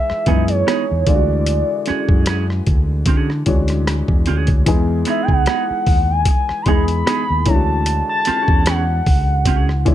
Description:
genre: R&B, neo-soul.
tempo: 75 BPM.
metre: 4/4.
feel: swing 54% on 16ths.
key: unclear.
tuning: A4 = 442 Hz.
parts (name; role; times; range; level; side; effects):
gliding portamento lead; melody; 0.0-9.9 s; C#5 to C#6; -20 LUFS; right 1 dB; chorus, phaser, slapback echo.
warm upright piano; accompaniment; 0.0-9.9 s; D3 to G#4; -23 LUFS; left 4 dB; none.
fretless electric bass; bass; 0.1-9.9 s; C#2 to D3; -19 LUFS; equal; none.
boom bap sampler-style drum kit; drums; 0.1-9.9 s; hi-hat, kick drum, rim click; -17 LUFS; equal; none.
clean electric guitar; second line; 0.3-9.7 s; B3 to G#4; -23 LUFS; right 8 dB; none.
room: little or no reverb.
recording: dark, warm production.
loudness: -14 LUFS.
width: side -12 dB against mid.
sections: 0.0-9.9 A section.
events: none.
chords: 0.0 Emaj7; 1.1 Dmaj9#11; 4.7 Emaj7; 7.5 Dmaj9#11.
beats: 0.67 | 1.47 2.27 3.06 3.87 | 4.67 5.46 6.26 7.07 | 7.87 8.66 9.46.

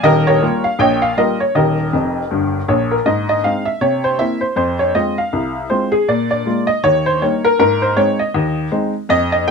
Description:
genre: jazz, stride piano.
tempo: 159 BPM.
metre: 4/4.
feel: swing 59% on 8ths.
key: Ab major.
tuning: A4 = 441 Hz.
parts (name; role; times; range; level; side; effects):
clear upright piano; solo; 0.0-9.5 s; Eb1 to G5; -14 LUFS; equal; none.
room: moderate studio ambience, RT60 0.5 s.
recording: none.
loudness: -14 LUFS.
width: side -5 dB against mid.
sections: 0.0-3.1 A section; 3.1-9.5 B section.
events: upright piano fill 1.9-3.1.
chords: 0.0 Eb9; 3.1 Ab; 3.8 C7; 4.6 Fm; 6.1 Bb7; 6.8 Eb; 7.6 Ab.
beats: | 0.04 0.42 0.80 1.18 | 1.55 1.93 2.31 2.68 | 3.06 3.44 3.81 4.19 | 4.57 4.94 5.32 5.70 | 6.08 6.45 6.83 7.21 | 7.58 7.96 8.34 8.72 | 9.10 9.47.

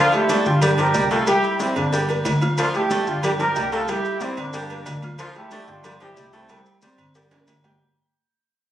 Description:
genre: latin, salsa.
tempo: 184 BPM.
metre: 4/4.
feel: straight.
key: unclear.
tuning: A4 = 441 Hz.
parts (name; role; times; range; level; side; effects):
bright trombone section; melody; 0.0-6.7 s; Bb3 to Bb4; -22 LUFS; equal; none.
raspy baritone saxophone; second line; 0.0-7.5 s; F3 to A3; -27 LUFS; equal; none.
warm grand piano; accompaniment; 0.0-7.8 s; G3 to G6; -28 LUFS; right 2 dB; none.
agogo bells and timbales; percussion; 0.1-7.8 s; none; -30 LUFS; right 1 dB; none.
congas; percussion; 0.1-7.8 s; none; -33 LUFS; left 1 dB; none.
maracas; percussion; 0.1-7.8 s; none; -36 LUFS; left 1 dB; none.
cowbell and bongos; percussion; 0.3-7.6 s; none; -31 LUFS; left 2 dB; none.
upright bass; bass; 0.5-7.8 s; G1 to D2; -25 LUFS; equal; none.
room: moderate studio reverb, RT60 0.6 s.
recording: recorded on a phone in the room, studio reverb.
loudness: -18 LUFS.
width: side -11 dB against mid.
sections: 0.0-7.8 A section.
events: fade-out 0.0-7.8; drum fill 1.6-2.6, 7.3-7.8.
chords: 0.0 Dm; 0.6 Gmadd9; 1.3 C; 1.9 Gm; 2.6 Dm; 3.2 Gmadd9; 3.9 C; 4.5 Gm; 5.2 Dm; 5.8 Gsus2; 6.5 C5; 7.2 Gm.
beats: 0.29 0.62 0.95 | 1.27 1.60 1.93 2.25 | 2.58 2.91 3.23 3.56 | 3.89 4.21 4.54 4.87 | 5.19 5.52 5.84 6.17 | 6.50 6.83 7.15 7.48.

